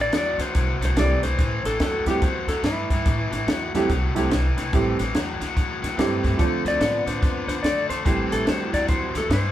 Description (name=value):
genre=electric blues shuffle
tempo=144 BPM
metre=4/4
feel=swing 63% on 8ths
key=A minor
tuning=A4 = 439 Hz
part: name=clean lap steel guitar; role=melody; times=0.0-3.9, 6.7-9.5 s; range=E4 to D5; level=-26 LUFS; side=left 1 dB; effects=none
part: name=biting overdriven guitar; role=riff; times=0.0-9.5 s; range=A2 to B3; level=-28 LUFS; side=left 4 dB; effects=none
part: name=upright bass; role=bass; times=0.0-9.5 s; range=A1 to A2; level=-27 LUFS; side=equal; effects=none
part: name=compact cocktail drum kit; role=drums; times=0.1-9.4 s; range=hi-hat, kick drum, snare drum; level=-25 LUFS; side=equal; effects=none
part: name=clear upright piano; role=accompaniment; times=1.0-9.2 s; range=F3 to G4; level=-26 LUFS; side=right 3 dB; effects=none
room=light reverb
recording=band playing live in one room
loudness=-20 LUFS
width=side -12 dB against mid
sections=0.0-9.5 A section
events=none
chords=0.0 Am7; 6.4 Dm7; 8.1 Am7